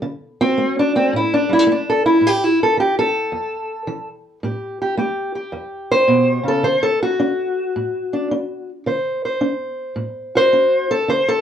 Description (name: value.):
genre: acoustic country blues, solo or duo.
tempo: 108 BPM.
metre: 4/4.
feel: swing 67% on 8ths.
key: unclear.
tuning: A4 = 440 Hz.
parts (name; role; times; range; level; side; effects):
fingerpicked steel-string acoustic guitar; solo; 0.0-11.4 s; E2 to C5; -16 LUFS; equal; none.
room: wet studio reverb, RT60 0.5 s.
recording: heard from further back in the room.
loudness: -16 LUFS.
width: side -9 dB against mid.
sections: 0.0-11.4 A section.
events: steel-string acoustic guitar solo 0.0-11.4.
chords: 0.0 D; 2.2 A7(no3); 6.6 D7.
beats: | 0.03 0.57 1.12 1.68 | 2.23 2.78 3.33 3.88 | 4.43 4.99 5.54 6.09 | 6.65 7.20 7.76 8.31 | 8.87 9.42 9.98 10.53 | 11.09.